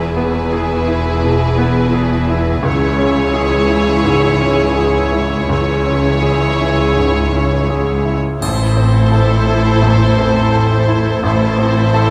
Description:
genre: cinematic, emotional film score for orchestra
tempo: 85 BPM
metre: 4/4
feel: rubato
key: unclear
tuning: A4 = 440 Hz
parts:
  - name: clear symphonic violin section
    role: melody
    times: 0.0-12.1 s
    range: B4 to C#5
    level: -24 LUFS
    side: equal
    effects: none
  - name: rich symphonic violin section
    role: second line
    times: 0.0-12.1 s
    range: G#4 to A4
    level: -26 LUFS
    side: equal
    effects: none
  - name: bright baby grand piano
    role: accompaniment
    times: 0.0-12.1 s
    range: A1 to A4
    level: -21 LUFS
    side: equal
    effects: none
  - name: warm symphonic viola section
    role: accompaniment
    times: 0.0-12.1 s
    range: E4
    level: -26 LUFS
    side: equal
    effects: none
  - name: mellow French horn section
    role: sustained chords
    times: 0.0-12.1 s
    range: E3 to C5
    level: -24 LUFS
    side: equal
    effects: none
  - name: clear studio double bass section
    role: bass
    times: 0.0-12.1 s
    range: E1 to C#2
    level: -21 LUFS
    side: equal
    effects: none
  - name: rich symphonic cello section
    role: bass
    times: 0.0-12.1 s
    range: C#2 to A2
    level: -20 LUFS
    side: equal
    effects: none
  - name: triangle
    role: percussion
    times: 8.4-9.8 s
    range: none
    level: -34 LUFS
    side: equal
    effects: none
room: moderate scoring stage reverb, RT60 1.9 s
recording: none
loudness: -14 LUFS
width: mono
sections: 0.0-12.1 A section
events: none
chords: 0.0 E; 2.7 C#m; 8.4 Am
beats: 0.54 1.25 1.95 | 2.66 3.36 4.06 4.78 | 5.51 6.24 6.97 7.70 | 8.42 9.13 9.84 10.55 | 11.25 11.95

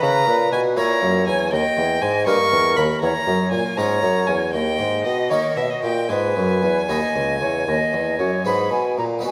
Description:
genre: classical, baroque-style sonata movement with continuo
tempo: 78 BPM (dotted quarters)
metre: 12/8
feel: rubato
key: G# minor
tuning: A4 = 440 Hz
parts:
  - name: warm violin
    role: melody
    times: 0.0-9.3 s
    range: B4 to C#6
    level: -26 LUFS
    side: equal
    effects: none
  - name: concert flute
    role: second line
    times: 0.0-9.3 s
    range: A#4 to B5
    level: -25 LUFS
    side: equal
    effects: none
  - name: harpsichord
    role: accompaniment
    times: 0.0-9.3 s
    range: C#2 to C#5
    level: -28 LUFS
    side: equal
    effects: none
  - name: mellow bassoon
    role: bass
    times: 0.0-9.3 s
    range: C#2 to D#3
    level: -24 LUFS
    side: equal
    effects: none
room: wet recital hall reverb, RT60 1.5 s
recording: none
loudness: -20 LUFS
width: mono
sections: 0.0-9.2 A section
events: none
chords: 0.0 A#dim; 1.5 D#; 3.0 C#m/E; 4.5 D#7; 6.1 G#m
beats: | 0.03 0.77 1.52 2.27 | 3.02 3.78 4.54 5.30 | 6.09 6.89 7.67 8.46 | 9.24

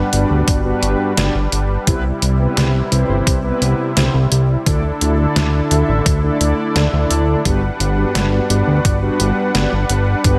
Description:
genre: synthwave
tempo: 86 BPM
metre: 4/4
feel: straight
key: G major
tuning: A4 = 442 Hz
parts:
  - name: soft supersaw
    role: sustained chords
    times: 0.0-10.4 s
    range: C3 to F#5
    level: -24 LUFS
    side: equal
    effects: sidechain pumping
  - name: mellow synth brass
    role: stabs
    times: 0.0-10.4 s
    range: G2 to E5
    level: -23 LUFS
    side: equal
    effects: chorus, digital delay
  - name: fat analog bass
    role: bass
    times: 0.0-10.4 s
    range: G1 to D2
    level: -19 LUFS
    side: equal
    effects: tube saturation
  - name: detuned 8-bit digital drum machine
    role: drums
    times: 0.1-10.4 s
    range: hi-hat, snare drum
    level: -22 LUFS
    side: equal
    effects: overdrive
  - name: electronic kick drum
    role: drums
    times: 0.5-10.4 s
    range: none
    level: -20 LUFS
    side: equal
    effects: overdrive
room: light reverb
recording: none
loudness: -16 LUFS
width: mono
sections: 0.0-10.4 A section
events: none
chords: 0.0 Gmaj7; 1.9 Cmaj7; 4.7 Dsus2; 7.5 Gmaj7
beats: 0.48 1.18 | 1.87 2.57 3.27 3.96 | 4.66 5.36 6.06 6.76 | 7.45 8.15 8.85 9.55 | 10.24

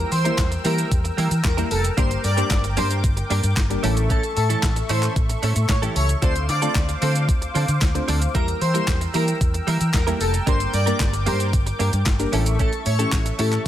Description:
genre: dance-pop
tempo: 113 BPM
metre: 4/4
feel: straight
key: unclear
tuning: A4 = 440 Hz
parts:
  - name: airy dreamy lead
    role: melody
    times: 0.0-13.5 s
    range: A4 to D5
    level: -27 LUFS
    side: left 1 dB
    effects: chorus, sidechain pumping, digital delay
  - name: soft round pluck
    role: accompaniment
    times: 0.0-13.7 s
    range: E3 to C5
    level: -29 LUFS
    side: left 1 dB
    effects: chorus, phaser, sidechain pumping
  - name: warm analog pad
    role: sustained chords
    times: 0.0-13.7 s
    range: A4 to E6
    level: -30 LUFS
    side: left 1 dB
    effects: chorus, sidechain pumping
  - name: direct-recorded clean electric guitar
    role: riff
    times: 0.0-13.6 s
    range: F3 to Bb4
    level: -30 LUFS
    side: right 4 dB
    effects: analog chorus
  - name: vintage muted fingered electric bass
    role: bass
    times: 0.0-13.7 s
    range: F1 to E3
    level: -22 LUFS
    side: equal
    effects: sidechain pumping
  - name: clean 12-bit digital drum machine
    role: drums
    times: 0.1-13.7 s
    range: handclaps, hi-hat, kick drum, shaker, snare drum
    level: -23 LUFS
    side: equal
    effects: overdrive
  - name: group handclap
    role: percussion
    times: 0.4-13.2 s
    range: none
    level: -38 LUFS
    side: left 4 dB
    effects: none
room: little or no reverb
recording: none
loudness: -18 LUFS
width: side -12 dB against mid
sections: 0.0-13.7 A section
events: none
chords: 0.0 Edim; 2.0 Gm; 3.8 A; 6.2 Dm7; 8.3 Edim; 10.5 Gm; 12.3 A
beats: 0.38 0.92 1.45 | 1.98 2.51 3.04 3.57 | 4.10 4.63 5.16 5.69 | 6.22 6.75 7.29 7.82 | 8.35 8.88 9.41 9.94 | 10.47 11.00 11.53 12.06 | 12.60 13.13 13.66

